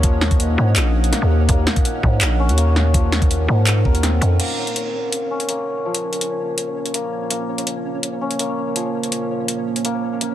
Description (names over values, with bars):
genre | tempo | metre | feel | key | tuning
half-time drum and bass | 165 BPM | 4/4 | half-time | Bb minor | A4 = 440 Hz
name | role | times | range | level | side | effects
deep dark ambient pad | sustained chords | 0.0-10.3 s | Bb3 to Gb5 | -26 LUFS | right 2 dB | chorus, built-in reverb, vintage 12-bit sampler grit, sidechain pumping
santur | arpeggios | 0.0-10.3 s | F3 to Bb4 | -25 LUFS | left 3 dB | low-pass filter, tape echo
growling 808-style bass | bass | 0.0-4.4 s | Bb1 to Ab2 | -16 LUFS | equal | none
drum and bass drum kit | drums | 0.0-10.3 s | crash cymbal, handclaps, hi-hat, snare drum | -22 LUFS | equal | none
electronic kick drum | drums | 0.0-3.9 s | none | -17 LUFS | equal | none
pulsing gated texture | texture | 0.0-10.3 s | Db4 to Db5 | -32 LUFS | right 3 dB | chorus, built-in reverb
room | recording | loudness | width
light reverb, digital ambience | dense, heavily limited modern master | -17 LUFS | side -12 dB against mid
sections
0.0-4.4 A section; 4.4-10.3 B section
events
drop 0.0-4.4; filter sweep on ambient pad 4.4-10.3; filter sweep on santur 4.4-10.3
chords
0.0 Ebm; 4.4 Bbm